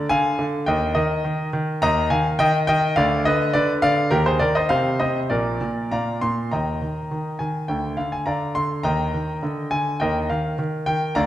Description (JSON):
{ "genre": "classical-period piano sonatina", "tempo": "104 BPM", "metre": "2/4", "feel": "straight", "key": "Eb major", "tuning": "A4 = 439 Hz", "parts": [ { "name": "clear concert grand piano", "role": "solo", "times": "0.0-11.3 s", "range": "Bb1 to C6", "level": "-19 LUFS", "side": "equal", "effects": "none" } ], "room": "wet recital hall reverb, RT60 1.4 s", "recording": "none", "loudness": "-19 LUFS", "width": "side -13 dB against mid", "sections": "0.0-6.5 A section; 6.5-11.3 B section", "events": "none", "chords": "0.0 Bb/D (rootless); 0.7 Eb5; 1.8 Ab5/Eb; 2.4 N.C.; 3.0 Dm6; 4.1 Eb; 4.7 N.C.; 5.3 Bb; 6.5 Eb; 7.7 Dm7b5; 8.9 Eb; 9.4 Bb7/D (rootless); 10.0 Eb5" }